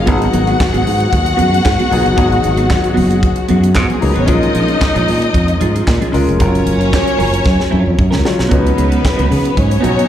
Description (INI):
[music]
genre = disco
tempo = 114 BPM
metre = 4/4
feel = straight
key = G# dorian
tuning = A4 = 440 Hz
[part]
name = clear studio string section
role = second line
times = 0.0-10.1 s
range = E#3 to F#5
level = -18 LUFS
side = left 2 dB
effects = slapback echo
[part]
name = warm grand piano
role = accompaniment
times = 0.0-10.1 s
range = F#3 to C#5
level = -20 LUFS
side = left 5 dB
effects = slapback echo
[part]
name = fingered electric bass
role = bass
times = 0.0-10.0 s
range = E#1 to C#3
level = -15 LUFS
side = equal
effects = none
[part]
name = clean electric guitar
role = accompaniment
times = 0.1-10.1 s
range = B3 to A#4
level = -20 LUFS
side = right 4 dB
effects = wide subtle chorus, slapback echo
[part]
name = tight funk drum kit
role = drums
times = 0.1-10.1 s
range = handclaps, hi-hat, kick drum, snare drum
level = -17 LUFS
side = right 1 dB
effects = none
[part]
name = congas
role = percussion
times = 0.1-10.0 s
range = none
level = -25 LUFS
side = left 4 dB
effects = none
[sound]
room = light reverb, small room ambience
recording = live gig heard through the venue's PA, club reverb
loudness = -11 LUFS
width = side -10 dB against mid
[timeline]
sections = 0.0-8.5 A section; 8.5-10.1 B section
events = drum fill 7.5-8.5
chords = 0.1 G#m7; 4.3 A#m7; 6.4 F#maj7; 8.5 C#9sus4